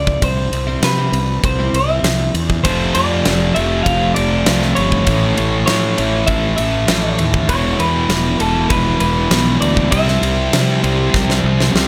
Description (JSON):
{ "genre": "quiet-loud alternative rock", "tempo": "99 BPM", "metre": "4/4", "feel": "straight", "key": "unclear", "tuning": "A4 = 440 Hz", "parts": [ { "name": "electric guitar through a small old amp", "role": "melody", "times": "0.0-11.9 s", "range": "A4 to F5", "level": "-23 LUFS", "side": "equal", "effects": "tape echo" }, { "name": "fuzz fingered electric bass", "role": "bass", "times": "0.0-11.9 s", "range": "E1 to C3", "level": "-22 LUFS", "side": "equal", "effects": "overdrive" }, { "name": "huge arena drum kit", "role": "drums", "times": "0.1-11.9 s", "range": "kick drum, ride cymbal, snare drum", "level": "-21 LUFS", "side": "equal", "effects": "none" }, { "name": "twelve-string electric guitar", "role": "arpeggios", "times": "0.4-2.2 s", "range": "C3 to E4", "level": "-29 LUFS", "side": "equal", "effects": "tremolo, tape echo" }, { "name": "thick fuzz guitar", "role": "riff", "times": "2.6-11.9 s", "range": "E2 to C4", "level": "-23 LUFS", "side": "equal", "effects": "distortion" }, { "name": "thick fuzz guitar", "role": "riff", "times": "2.6-11.9 s", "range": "A2 to F4", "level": "-22 LUFS", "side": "equal", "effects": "distortion" } ], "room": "light reverb, small room ambience", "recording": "none", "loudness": "-16 LUFS", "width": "mono", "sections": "0.0-11.9 A section", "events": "drum fill 11.1-11.9", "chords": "0.2 C; 2.6 F; 5.1 A; 7.5 E; 9.9 C", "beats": "| 0.22 0.83 1.44 2.04 | 2.65 3.25 3.86 4.46 | 5.07 5.68 6.28 6.89 | 7.50 8.10 8.71 9.31 | 9.92 10.53 11.14 11.74" }